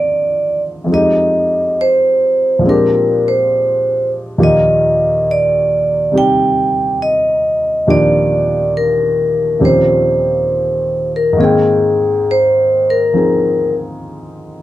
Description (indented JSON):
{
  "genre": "jazz ballad",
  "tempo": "69 BPM",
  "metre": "4/4",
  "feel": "swing 69% on 8ths",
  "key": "Eb major, Ab major from 11.4 s",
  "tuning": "A4 = 441 Hz",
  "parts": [
    { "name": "vibraphone with medium hard mallets", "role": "melody", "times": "0.0-13.7 s", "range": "Ab4 to G5", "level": "-13 LUFS", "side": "equal", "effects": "none" },
    { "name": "warm grand piano", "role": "accompaniment", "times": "0.0-14.6 s", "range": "Eb2 to G5", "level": "-17 LUFS", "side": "equal", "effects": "none" }
  ],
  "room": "little or no reverb",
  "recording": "dry, close 1970s-style studio recording",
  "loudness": "-11 LUFS",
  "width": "side -14 dB against mid",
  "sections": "0.0-11.4 A section; 11.4-14.6 B section",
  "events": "none",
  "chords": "0.0 Ab69; 0.9 Fm7; 2.6 Bb13; 4.4 Ebmaj7; 9.6 Eb13; 11.4 Abmaj9"
}